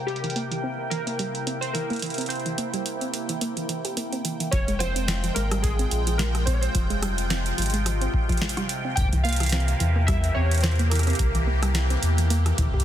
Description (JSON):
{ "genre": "IDM", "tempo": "108 BPM", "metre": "4/4", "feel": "swing 56% on 16ths", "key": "F minor", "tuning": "A4 = 439 Hz", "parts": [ { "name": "phased analog pad", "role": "sustained chords", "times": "0.0-12.8 s", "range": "C3 to G5", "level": "-31 LUFS", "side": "equal", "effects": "phaser, chorus" }, { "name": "bubbling stepped-filter texture", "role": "texture", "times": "0.0-4.5 s", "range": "Bb3 to Bb4", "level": "-40 LUFS", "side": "equal", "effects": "chorus, built-in reverb" }, { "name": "warbly lo-fi synth keys", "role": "melody", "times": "0.1-11.4 s", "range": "G4 to G5", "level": "-32 LUFS", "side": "right 1 dB", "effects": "chorus, digital delay" }, { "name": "booming analog drum machine", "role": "drums", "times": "0.1-12.8 s", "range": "hi-hat, rim click, snare drum", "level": "-30 LUFS", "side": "right 2 dB", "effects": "low-pass filter on hats, low-pass filter on snare" }, { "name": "soft round pluck", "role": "arpeggios", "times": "0.2-12.8 s", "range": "E3 to G4", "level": "-32 LUFS", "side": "right 2 dB", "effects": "chorus, tape echo" }, { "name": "warm sub bass", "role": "bass", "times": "4.5-12.5 s", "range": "F1 to E2", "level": "-23 LUFS", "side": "equal", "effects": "none" }, { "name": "electronic kick drum", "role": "drums", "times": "4.5-12.8 s", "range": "none", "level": "-25 LUFS", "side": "equal", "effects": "none" } ], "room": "little or no reverb", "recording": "dense, heavily limited modern master", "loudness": "-22 LUFS", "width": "side -11 dB against mid", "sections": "0.0-4.5 A section; 4.5-12.8 B section", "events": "filter sweep on analog synth pad 0.0-4.5", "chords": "0.1 C7; 4.5 Fmadd9; 9.0 C7", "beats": "| 0.08 0.64 1.19 1.75 | 2.30 2.86 3.42 3.97 | 4.53 5.08 5.64 6.19 | 6.75 7.30 7.86 8.41 | 8.97 9.53 10.08 10.64 | 11.19 11.75 12.30" }